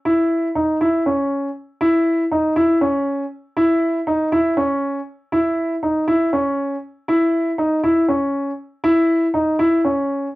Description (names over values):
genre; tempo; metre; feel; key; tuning
progressive instrumental, progressive; 239 BPM (eighths); 7/8; straight; unclear; A4 = 442 Hz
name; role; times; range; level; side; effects
warm concert grand piano; solo; 0.1-10.3 s; C#4 to E4; -16 LUFS; equal; cassette tape
room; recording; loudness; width
wet studio reverb, RT60 0.5 s; home recording on cassette; -16 LUFS; side -18 dB against mid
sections
0.0-10.4 A section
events
none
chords
none